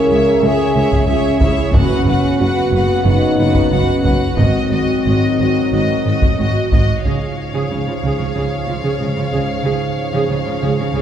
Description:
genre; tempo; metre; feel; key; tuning
cinematic, epic orchestral film score; 92 BPM; 4/4; straight; unclear; A4 = 440 Hz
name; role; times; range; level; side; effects
rich chamber violin section; melody; 0.0-11.0 s; D#5 to F#5; -24 LUFS; left 3 dB; none
rich chamber violin section; second line; 0.0-11.0 s; B4 to D#5; -28 LUFS; left 1 dB; none
rich symphonic viola section; accompaniment; 0.0-11.0 s; F4 to G#4; -24 LUFS; right 3 dB; none
mellow French horn section; sustained chords; 0.0-11.0 s; Ab3 to A#4; -19 LUFS; left 2 dB; none
warm trombone section; sustained chords; 0.0-11.0 s; Ab2 to C#4; -23 LUFS; right 1 dB; none
rich studio cello section; bass; 0.1-11.0 s; C#2 to Db3; -22 LUFS; right 2 dB; none
rich symphonic double bass section; bass; 0.1-11.0 s; F#1 to C#2; -21 LUFS; right 2 dB; none
taiko ensemble; drums; 0.9-8.3 s; none; -18 LUFS; equal; none
room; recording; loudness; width
wet scoring stage reverb, RT60 2.1 s; heard from further back in the room; -13 LUFS; side -9 dB against mid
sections
0.0-7.0 A section; 7.0-11.0 B section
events
none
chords
0.0 C#m; 1.7 F#sus4; 4.4 G#7; 7.0 Db

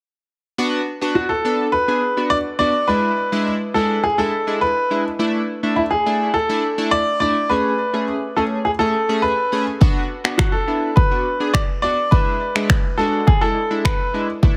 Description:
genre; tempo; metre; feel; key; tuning
dance-pop; 104 BPM; 4/4; straight; B dorian; A4 = 441 Hz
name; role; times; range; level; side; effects
chorused polysynth; accompaniment; 0.6-14.6 s; G#3 to A4; -25 LUFS; equal; sidechain pumping
clear grand piano; melody; 1.2-14.3 s; E4 to D5; -22 LUFS; equal; none
deep house drum kit; drums; 9.8-14.6 s; finger snaps, kick drum; -18 LUFS; equal; soft clipping on snare
room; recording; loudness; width
light reverb, digital ambience; dense, heavily limited modern master; -19 LUFS; mono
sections
0.6-14.6 A section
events
none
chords
0.6 Bm; 2.9 E7; 5.2 Dsus2; 7.5 Amaj7; 9.8 Bm; 12.1 E7

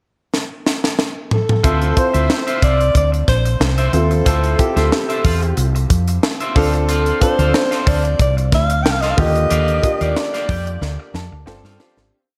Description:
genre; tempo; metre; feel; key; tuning
polished 1980s jazz-funk pop; 92 BPM; 4/4; swing 54% on 16ths; D minor; A4 = 440 Hz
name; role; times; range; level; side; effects
tight funk drum kit; drums; 0.3-12.1 s; hi-hat, kick drum, snare drum, toms; -21 LUFS; equal; none
breathy alto saxophone; melody; 1.3-11.0 s; A4 to G5; -23 LUFS; equal; delay
clear grand piano; accompaniment; 1.6-12.1 s; D3 to A5; -25 LUFS; equal; subtle chorus
electric guitar at the edge of break-up; riff; 1.6-12.0 s; F4 to G5; -28 LUFS; equal; lush chorus
woody fretless electric bass; bass; 1.6-12.1 s; G1 to G2; -20 LUFS; equal; subtle chorus
room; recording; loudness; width
moderate plate reverb, RT60 1.5 s, small room ambience; dreamy mix soaked in reverb; -17 LUFS; mono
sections
0.0-1.6 pickup bar; 1.6-12.1 verse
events
drum fill 0.3-1.6, 10.8-12.1; fade-out 9.5-12.1; grand piano fill 10.8-12.1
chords
0.0 N.C.; 1.6 Dm9; 6.6 F6; 9.2 Ebmaj9; 11.5 G9sus4

